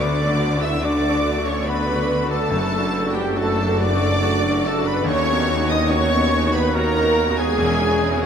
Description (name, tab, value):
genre	classical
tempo	72 BPM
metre	3/4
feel	rubato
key	B major from 5.1 s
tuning	A4 = 442 Hz
part	clear concert grand piano	melody	0.0-8.3 s	D2 to G#4	-25 LUFS	equal	none
part	rich studio violin section	melody	0.0-8.3 s	G5 to E6	-27 LUFS	right 1 dB	none
part	mellow clarinet	second line	0.0-8.3 s	G4 to E5	-28 LUFS	right 4 dB	none
part	rich studio violin section	second line	0.0-8.2 s	G4 to E5	-28 LUFS	equal	none
part	small flute group	second line	0.0-8.3 s	G4 to E5	-27 LUFS	equal	none
part	warm oboe	second line	0.0-8.3 s	G4 to E5	-28 LUFS	left 4 dB	none
part	rich studio viola section	accompaniment	0.0-8.2 s	A3 to A4	-30 LUFS	right 2 dB	none
part	dark French horn section	sustained chords	0.0-8.3 s	G3 to E4	-27 LUFS	right 1 dB	none
part	rich studio cello section	bass	0.0-8.3 s	D#2 to D3	-27 LUFS	left 1 dB	none
part	rich studio double bass section	bass	0.0-8.3 s	E1 to D#2	-28 LUFS	equal	none
part	warm tuba	bass	0.0-8.3 s	E1 to D#2	-29 LUFS	equal	none
part	timpani	percussion	2.5-3.8 s	F#2	-34 LUFS	left 2 dB	none
room	wet huge ambient reverb, RT60 8.1 s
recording	in a vast, echoing space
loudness	-17 LUFS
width	side -8 dB against mid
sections	0.0-8.3 A section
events	none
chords	0.0 D; 2.5 D/F#; 5.1 B/D#; 7.6 C#m7/E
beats	| 0.00 0.83 1.67 | 2.50 3.36 4.24 | 5.07 5.90 6.75 | 7.59